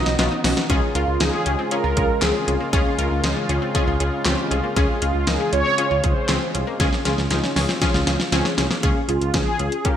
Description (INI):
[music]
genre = synth-pop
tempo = 118 BPM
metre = 4/4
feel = straight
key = unclear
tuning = A4 = 441 Hz
[part]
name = mellow synth brass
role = melody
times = 0.0-10.0 s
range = F4 to D#5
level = -24 LUFS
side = right 2 dB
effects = chorus, digital delay
[part]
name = wide unison pluck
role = accompaniment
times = 0.0-10.0 s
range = B3 to Bb4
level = -25 LUFS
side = left 1 dB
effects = wide subtle chorus
[part]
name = chorused pulse-width pad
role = sustained chords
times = 0.0-8.8 s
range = Db3 to F4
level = -29 LUFS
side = equal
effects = none
[part]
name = analog pluck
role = arpeggios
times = 0.0-8.8 s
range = Bb3 to F4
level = -30 LUFS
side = left 4 dB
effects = chorus, digital delay
[part]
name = smooth synth bass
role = bass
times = 0.0-9.7 s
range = B1 to Db2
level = -24 LUFS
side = equal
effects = none
[part]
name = pop drum kit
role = drums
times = 0.1-10.0 s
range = handclaps, hi-hat, kick drum, snare drum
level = -22 LUFS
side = equal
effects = gated reverb
[sound]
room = moderate plate reverb, RT60 2.1 s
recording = bright 1980s-style digital production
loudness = -18 LUFS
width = side -9 dB against mid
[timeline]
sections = 0.7-8.8 A section; 8.8-10.0 B section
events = drum fill 0.0-0.7, 6.8-8.8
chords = 0.0 Badd9; 0.7 Db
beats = 0.19 | 0.70 1.21 1.71 2.22 | 2.73 3.24 3.75 4.26 | 4.76 5.27 5.78 6.29 | 6.80 7.31 7.82 8.32 | 8.83 9.34 9.85